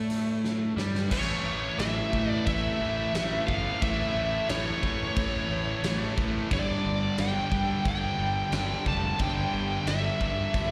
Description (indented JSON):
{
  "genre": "hard rock",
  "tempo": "89 BPM",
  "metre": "4/4",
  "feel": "straight",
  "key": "unclear",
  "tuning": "A4 = 441 Hz",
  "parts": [
    { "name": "bluesy overdriven lead guitar", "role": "melody", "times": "0.0-10.7 s", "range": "C#5 to A5", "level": "-33 LUFS", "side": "equal", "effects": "distortion, slapback echo" },
    { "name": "cranked stack guitar", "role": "riff", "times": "0.0-10.7 s", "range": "G2 to A3", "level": "-36 LUFS", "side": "equal", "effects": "overdrive, slapback echo" },
    { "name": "overdriven semi-hollow guitar", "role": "riff", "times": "0.0-10.7 s", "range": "G2 to A3", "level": "-38 LUFS", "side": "equal", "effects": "none" },
    { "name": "fuzz fingered electric bass", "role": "bass", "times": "0.0-10.7 s", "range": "F1 to A2", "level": "-35 LUFS", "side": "equal", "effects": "overdrive" },
    { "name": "big rock drum kit", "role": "drums", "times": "0.1-10.7 s", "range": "crash cymbal, hi-hat, kick drum, snare drum", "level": "-35 LUFS", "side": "equal", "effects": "none" },
    { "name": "high-gain distorted guitar", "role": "riff", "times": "1.1-10.7 s", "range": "G2 to A3", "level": "-38 LUFS", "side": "equal", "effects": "distortion, slapback echo" }
  ],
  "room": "small room ambience",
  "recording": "live gig heard through the venue's PA, recital hall reverb",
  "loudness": "-28 LUFS",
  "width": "mono",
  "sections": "0.0-1.1 A section; 1.1-10.7 B section",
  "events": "drum fill 0.4-1.1",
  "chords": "0.0 D5; 1.1 A; 6.5 G5"
}